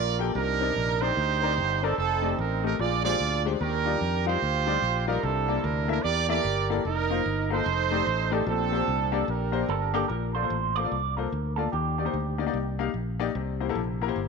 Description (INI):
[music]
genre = uptempo gospel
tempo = 148 BPM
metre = 4/4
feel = swing 63% on 8ths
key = Bb major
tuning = A4 = 441 Hz
[part]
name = clear horn section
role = melody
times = 0.0-10.1 s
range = C4 to D5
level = -26 LUFS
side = right 8 dB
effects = tape echo
[part]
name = fingered electric bass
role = bass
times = 0.0-14.3 s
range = F1 to F2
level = -30 LUFS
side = left 1 dB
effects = none
[part]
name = clear grand piano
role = accompaniment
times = 0.2-14.2 s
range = Bb2 to G5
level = -30 LUFS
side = left 12 dB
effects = none
[part]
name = electric guitar with an envelope filter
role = melody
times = 9.7-12.9 s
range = G4 to D5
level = -30 LUFS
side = right 11 dB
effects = harmonic tremolo
[sound]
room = moderate echo chamber reverb, RT60 1.5 s, small room ambience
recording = 1960s-style stereo with parts hard left and right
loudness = -24 LUFS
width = side -4 dB against mid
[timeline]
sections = 0.0-10.1 A section; 10.1-14.3 B section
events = none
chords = 0.4 Cm9; 2.0 F9; 2.8 Bb13; 3.6 Ebmaj9; 5.2 C13; 6.8 F7sus4; 7.7 F13; 8.5 Bb69; 10.1 Bbmaj7; 11.7 Ebmaj7; 13.3 C7